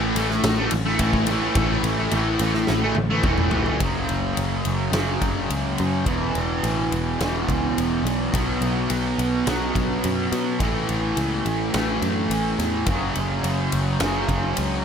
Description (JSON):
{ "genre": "rock, shoegaze and dream pop", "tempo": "106 BPM", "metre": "4/4", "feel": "straight", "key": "unclear", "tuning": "A4 = 440 Hz", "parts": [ { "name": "fuzz guitar", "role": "riff", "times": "0.0-14.8 s", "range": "E2 to B3", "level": "-22 LUFS", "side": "equal", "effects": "distortion, analog chorus" }, { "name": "picked electric bass", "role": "bass", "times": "0.0-14.8 s", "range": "E1 to B2", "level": "-26 LUFS", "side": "equal", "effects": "none" }, { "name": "huge arena drum kit", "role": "drums", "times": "0.2-14.7 s", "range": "kick drum, ride cymbal, snare drum, toms", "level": "-27 LUFS", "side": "left 1 dB", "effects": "none" } ], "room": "light reverb", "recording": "faint mains hum", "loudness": "-20 LUFS", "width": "side -7 dB against mid", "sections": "0.0-3.8 A section; 3.8-14.8 B section", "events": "drum fill 2.7-3.8", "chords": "0.0 A5; 3.8 F#5; 6.1 E5; 8.3 B5; 10.6 A5; 12.9 F#5" }